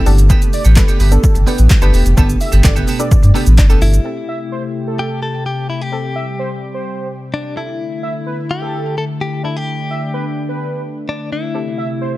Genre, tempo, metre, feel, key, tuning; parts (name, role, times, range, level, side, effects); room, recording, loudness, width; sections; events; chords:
dance-pop; 128 BPM; 4/4; straight; A minor; A4 = 442 Hz
soft round pluck; accompaniment; 0.0-12.2 s; B3 to B4; -24 LUFS; left 2 dB; chorus, sidechain pumping
chorused pulse-width pad; sustained chords; 0.0-12.2 s; B2 to G4; -24 LUFS; left 1 dB; sidechain pumping
twelve-string electric guitar; riff; 0.0-4.0 s; B3 to A4; -23 LUFS; right 6 dB; lush chorus
warm sub bass; bass; 0.1-4.0 s; E1 to G2; -10 LUFS; equal; sidechain pumping
punchy analog drum machine; drums; 0.1-4.0 s; handclaps, hi-hat, kick drum, shaker, snare drum; -12 LUFS; equal; overdrive
wide unison lead; melody; 0.5-12.1 s; A4 to E5; -26 LUFS; right 3 dB; sidechain pumping, tape echo
direct-recorded clean electric guitar; melody; 3.6-12.2 s; D4 to A4; -24 LUFS; left 4 dB; tremolo, tape echo
little or no reverb; -13 LUFS; side -18 dB against mid
0.0-4.0 A section; 4.0-12.2 B section
drop 0.0-4.0
0.1 Gadd9; 4.0 Am7; 7.6 E7sus4; 11.5 Am7